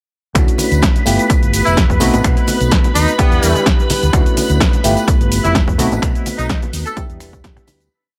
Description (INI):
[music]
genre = filtered disco house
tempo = 127 BPM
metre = 4/4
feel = swing 54% on 16ths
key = unclear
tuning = A4 = 440 Hz
[part]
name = barky reed electric piano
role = accompaniment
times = 0.3-7.9 s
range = G3 to G4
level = -22 LUFS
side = equal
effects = overdrive, fast tremolo, phaser, sidechain pumping
[part]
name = string machine, full ensemble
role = sustained chords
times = 0.4-7.9 s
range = B4 to B5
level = -25 LUFS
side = equal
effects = ensemble chorus, vintage 12-bit sampler grit, sidechain pumping
[part]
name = fingered electric bass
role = bass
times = 0.4-7.9 s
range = E1 to F2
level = -20 LUFS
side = equal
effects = sidechain pumping
[part]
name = electronic kick drum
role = drums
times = 0.4-7.5 s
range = none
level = -17 LUFS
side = equal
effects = none
[part]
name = punchy analog drum machine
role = drums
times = 0.4-7.9 s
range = finger snaps, hi-hat, shaker, snare drum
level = -23 LUFS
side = equal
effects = sidechain pumping on hats, sidechain pumping on perc
[part]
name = tambourine and congas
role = percussion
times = 0.4-7.9 s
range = none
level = -29 LUFS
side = equal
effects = sidechain pumping on perc
[part]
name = clear horn section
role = melody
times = 1.7-7.0 s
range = B3 to A4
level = -23 LUFS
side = equal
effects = vintage 12-bit sampler grit, sidechain pumping, dub echo
[sound]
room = light reverb, digital ambience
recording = none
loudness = -14 LUFS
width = mono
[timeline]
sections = 0.4-7.9 drop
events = drop 0.4-7.9; fade-out 5.4-7.9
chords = 0.4 Dmaj9; 1.1 G13; 2.0 B7b9; 3.2 Em7; 4.1 Dmaj9; 4.8 G13; 5.8 B7b9; 7.0 Em7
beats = | 0.35 0.83 1.30 1.77 | 2.24 2.72 3.19 3.66 | 4.13 4.61 5.08 5.55 | 6.02 6.50 6.97 7.44